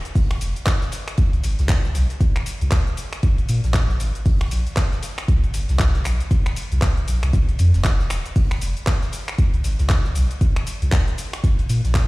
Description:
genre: deep house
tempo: 117 BPM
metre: 4/4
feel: swing 60% on 16ths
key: unclear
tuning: A4 = 440 Hz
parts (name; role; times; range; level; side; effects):
- deep house drum kit; drums; 0.1-12.1 s; cabasa, finger snaps, handclaps, hi-hat; -28 LUFS; equal; overdrive
- sub bass with octave; bass; 0.2-12.1 s; Eb1 to Bb2; -20 LUFS; equal; sidechain pumping
- electronic kick drum; drums; 0.2-12.1 s; none; -19 LUFS; equal; overdrive
- loose indie drum kit; drums; 0.2-12.1 s; hi-hat, ride cymbal, snare drum; -39 LUFS; left 2 dB; sidechain pumping on cymbals, high-pass filter on cymbals, sidechain pumping on hats, high-pass filter on hats, high-pass filter on snare, high-pass filter on room
room: little or no reverb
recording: played on a big sound system in a bare room, stone room reverb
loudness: -18 LUFS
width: side -21 dB against mid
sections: 0.0-12.1 A section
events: none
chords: none

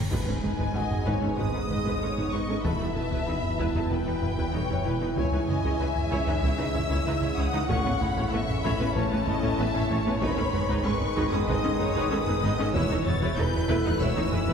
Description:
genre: cinematic, hybrid orchestral and electronic film score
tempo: 95 BPM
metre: 4/4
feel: straight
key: G# phrygian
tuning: A4 = 441 Hz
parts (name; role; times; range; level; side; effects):
- rich studio viola section; accompaniment; 0.0-14.5 s; B3 to C#5; -34 LUFS; right 1 dB; none
- brassy analog pad; sustained chords; 0.0-14.5 s; D#3 to A#5; -36 LUFS; equal; none
- soft round pluck; arpeggios; 0.0-14.5 s; C#3 to A4; -37 LUFS; left 2 dB; none
- smooth synth bass; riff; 0.0-14.5 s; C#2 to A3; -33 LUFS; right 2 dB; none
- rich symphonic double bass section; bass; 0.0-14.4 s; E1 to C#2; -35 LUFS; right 2 dB; none
- warm sub bass; bass; 0.0-14.5 s; D#1 to C#2; -37 LUFS; equal; none
- cymbal swell and impact; sound effects; 0.0-2.6 s; none; -37 LUFS; equal; none
- warm symphonic violin section; melody; 0.1-14.5 s; G5 to A6; -34 LUFS; left 3 dB; none
- warm symphonic violin section; second line; 0.1-14.5 s; B4 to F#5; -34 LUFS; left 2 dB; none
- clear trombone section; sustained chords; 0.1-14.5 s; G#2 to G#3; -36 LUFS; right 2 dB; none
- warm French horn section; sustained chords; 0.1-14.5 s; G#3 to E4; -35 LUFS; equal; none
- clear symphonic cello section; bass; 0.1-14.5 s; C#2 to A2; -36 LUFS; right 2 dB; none
- taiko ensemble; drums; 0.1-14.5 s; none; -32 LUFS; equal; none
- felt-muted upright piano; texture; 0.8-14.5 s; A3 to B5; -41 LUFS; left 2 dB; none
room: wet scoring stage reverb, RT60 1.8 s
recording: heard from further back in the room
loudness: -24 LUFS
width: side -6 dB against mid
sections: 0.1-14.5 A section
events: impact 0.1-2.6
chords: 0.1 G#m; 2.6 Em; 5.2 C#m; 7.7 A; 10.2 G#m; 12.7 Em

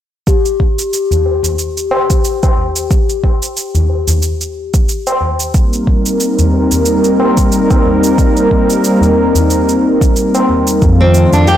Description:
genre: organic downtempo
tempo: 91 BPM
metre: 4/4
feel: swing 56% on 16ths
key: C dorian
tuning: A4 = 440 Hz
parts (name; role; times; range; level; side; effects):
- cabasa; drums; 0.3-11.6 s; none; -21 LUFS; right 4 dB; none
- electronic kick drum; drums; 0.3-11.0 s; none; -12 LUFS; equal; none
- bronze singing bowl; texture; 0.3-10.8 s; G4; -20 LUFS; left 7 dB; none
- tabla; percussion; 1.1-10.6 s; none; -16 LUFS; equal; none
- warm analog pad; sustained chords; 5.5-11.6 s; Eb3 to Bb4; -11 LUFS; equal; chorus, sidechain pumping
- smooth synth bass; bass; 10.8-11.6 s; F2; -9 LUFS; equal; none
- flamenco guitar; arpeggios; 11.0-11.6 s; C4 to G4; -11 LUFS; equal; none
room: light reverb, small room ambience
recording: blown-out, overdriven recording, overdrive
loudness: -10 LUFS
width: side -11 dB against mid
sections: 0.3-10.8 A section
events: none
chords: 0.3 N.C.; 5.5 Cm7; 10.8 F7

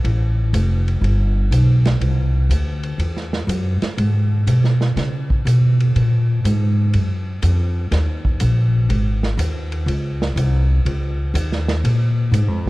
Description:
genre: jazz, big band swing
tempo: 122 BPM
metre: 4/4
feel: swing 68% on 8ths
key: unclear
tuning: A4 = 440 Hz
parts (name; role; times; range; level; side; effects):
- upright bass; bass; 0.0-12.7 s; F1 to C#3; -16 LUFS; equal; none
- vintage drum kit; drums; 0.0-12.5 s; hi-hat, kick drum, ride cymbal, snare drum; -27 LUFS; right 1 dB; none
room: little or no reverb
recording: dark, warm production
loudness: -16 LUFS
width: side -19 dB against mid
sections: 0.0-12.7 A section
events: none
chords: none

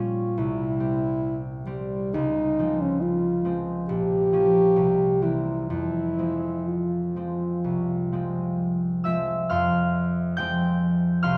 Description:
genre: classical, romantic duo for French horn and harp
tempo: 61-72 BPM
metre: 4/4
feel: rubato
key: F minor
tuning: A4 = 439 Hz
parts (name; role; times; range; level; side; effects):
- mellow French horn; melody; 0.0-9.1 s; G3 to G4; -27 LUFS; equal; none
- concert harp; accompaniment; 0.0-11.4 s; Bb1 to G6; -27 LUFS; equal; none
room: wet recital hall reverb, RT60 1.7 s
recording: none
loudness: -25 LUFS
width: mono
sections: 0.0-9.5 A section; 9.5-11.4 A section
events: none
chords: 0.4 C; 2.1 Dbmaj7; 3.9 Gm7b5/Bb; 4.8 C7; 5.7 Fm

